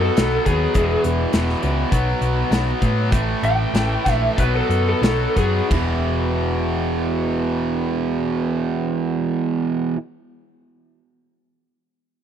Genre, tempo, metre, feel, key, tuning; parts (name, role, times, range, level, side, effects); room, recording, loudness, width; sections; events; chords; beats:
classic rock; 87-103 BPM; 4/4; straight; A4 = 441 Hz
lead guitar through a small cranked amp; melody; 0.0-5.7 s; G#4 to G5; -22 LUFS; left 1 dB; overdrive
raw garage guitar; riff; 0.0-10.0 s; E2 to B3; -25 LUFS; left 11 dB; overdrive
tight distorted guitar; riff; 0.0-10.0 s; E2 to B3; -23 LUFS; right 10 dB; distortion
hollow-body short-scale picked electric bass; bass; 0.0-9.9 s; E1 to A2; -23 LUFS; equal
big rock drum kit; drums; 0.2-5.9 s; crash cymbal, hi-hat, kick drum, snare drum, toms; -21 LUFS; equal
little or no reverb; dry, close 1970s-style studio recording; -18 LUFS; side -9 dB against mid
0.0-5.7 A section; 5.7-8.5 B section
lead electric guitar solo 0.0-5.7; slowing down 0.7-5.7
0.0 B; 0.7 E5; 1.9 B5; 3.1 A5; 4.4 B5; 5.7 E5
0.17 | 0.75 1.33 1.92 2.51 | 3.12 3.74 4.38 5.03 | 5.71 6.40 7.09 7.78